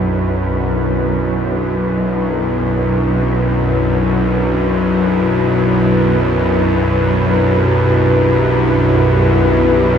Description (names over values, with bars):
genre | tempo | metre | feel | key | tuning
dark ambient drone | free time | none | none | unclear | A4 = 440 Hz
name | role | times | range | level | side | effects
dark analog pad | sustained chords | 0.0-10.0 s | B2 to B4 | -17 LUFS | left 1 dB | chorus
bowed-like drone | drone | 0.0-10.0 s | B1 to F#2 | -14 LUFS | equal | built-in reverb
wind-like tuned noise texture | texture | 0.0-10.0 s | B4 | -25 LUFS | right 1 dB | built-in reverb
room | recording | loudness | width
wet cathedral reverb, RT60 5.3 s | dreamy mix soaked in reverb | -12 LUFS | side -8 dB against mid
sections
0.0-10.0 A section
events
fade-in on analog synth pad 0.0-10.0; fade-in on synth texture 0.0-10.0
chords
0.0 Bm; 4.3 G/B